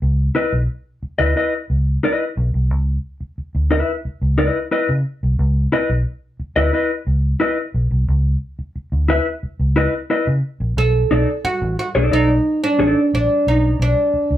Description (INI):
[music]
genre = funk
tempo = 89 BPM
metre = 4/4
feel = straight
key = unclear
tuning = A4 = 435 Hz
[part]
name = vintage muted fingered electric bass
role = bass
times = 0.0-14.4 s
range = A1 to C#3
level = -18 LUFS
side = equal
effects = none
[part]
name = mellow electric guitar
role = accompaniment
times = 0.3-13.0 s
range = D#4 to E5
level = -18 LUFS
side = left 2 dB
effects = vibrato effect
[part]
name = oud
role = melody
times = 10.8-14.4 s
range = D4 to A4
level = -17 LUFS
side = right 2 dB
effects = none
[sound]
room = light reverb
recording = band playing live in one room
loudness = -16 LUFS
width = side -12 dB against mid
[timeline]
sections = 0.0-10.8 A section; 10.8-14.4 B section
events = none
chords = 0.0 C#m9; 10.8 B7#9